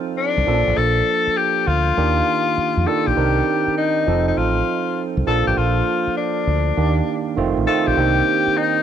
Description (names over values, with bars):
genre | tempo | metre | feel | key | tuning
R&B, new jack swing | 100 BPM | 4/4 | swing 66% on 16ths | C dorian | A4 = 440 Hz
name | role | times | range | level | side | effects
barky tine electric piano | accompaniment | 0.0-8.8 s | Eb3 to Bb4 | -21 LUFS | right 8 dB | auto-pan, cassette tape
clear tenor saxophone | melody | 0.2-8.8 s | D4 to A4 | -20 LUFS | left 6 dB | cassette tape
deep dub fingered electric bass | bass | 0.4-8.5 s | F1 to F2 | -20 LUFS | equal | none
room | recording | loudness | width
light reverb, small room ambience | home recording on cassette | -16 LUFS | side -9 dB against mid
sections
0.0-8.0 A section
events
none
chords
0.5 Bbmaj7; 2.0 Ebmaj7; 3.2 Cm9; 4.1 F7; 5.3 Bbmaj7; 6.8 Ebmaj7; 7.4 F7; 8.0 Cm9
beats
0.17 | 0.77 1.37 1.97 2.57 | 3.17 3.77 4.37 4.97 | 5.57 6.17 6.77 7.37 | 7.97 8.57